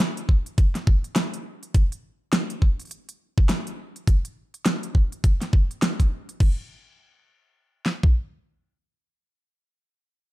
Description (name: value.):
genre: glitch hop.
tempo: 103 BPM.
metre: 4/4.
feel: swing 60% on 16ths.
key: none.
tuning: none.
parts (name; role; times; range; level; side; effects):
pop drum kit; drums; 0.0-6.5 s; crash cymbal, hi-hat, snare drum; -25 LUFS; equal; studio reverb.
pop drum kit; drums; 0.3-8.1 s; kick drum, snare drum; -18 LUFS; equal; studio reverb.
room: digital ambience.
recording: dark, warm production.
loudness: -21 LUFS.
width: side -18 dB against mid.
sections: 0.0-6.4 A section; 6.4-8.7 B section.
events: none.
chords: none.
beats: 0.58 1.16 | 1.74 2.33 2.91 3.49 | 4.07 4.66 5.24 5.82 | 6.40 6.99 7.57.